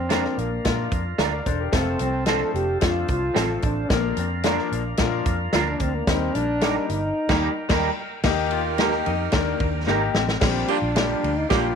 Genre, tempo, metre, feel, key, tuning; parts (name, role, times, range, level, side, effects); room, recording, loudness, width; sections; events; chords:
uptempo 1960s-style soul; 111 BPM; 4/4; straight; Bb major; A4 = 440 Hz
warm French horn; melody; 0.0-11.8 s; Bb3 to A4; -26 LUFS; right 1 dB
tonewheel organ; sustained chords; 0.0-11.8 s; A4 to Bb5; -35 LUFS; right 2 dB; slow rotary speaker
hollow-body jazz guitar; riff; 0.0-11.7 s; Bb3 to F4; -32 LUFS; left 12 dB
vintage muted fingered electric bass; bass; 0.0-11.7 s; E1 to Bb2; -28 LUFS; right 1 dB
clear baby grand piano; accompaniment; 0.1-11.8 s; Eb3 to F5; -28 LUFS; left 11 dB
electric guitar through a small old amp; stabs; 0.1-10.0 s; C4 to Bb4; -27 LUFS; right 14 dB; ensemble chorus, slapback echo
natural country drum kit; drums; 0.1-11.6 s; crash cymbal, hi-hat, kick drum, ride cymbal, snare drum; -25 LUFS; equal
clear saxophone section; second line; 8.2-11.7 s; Eb3 to Bb4; -28 LUFS; right 15 dB
light reverb, small room ambience; 1960s-style stereo with parts hard left and right; -20 LUFS; side -6 dB against mid
0.0-8.2 A section; 8.2-10.4 B section; 10.4-11.8 C section
French horn solo 0.0-8.2; band accent 7.2-8.2; drum fill 9.9-10.4
0.0 Bb; 1.7 F; 3.9 Bb; 6.1 Eb; 10.4 Bb6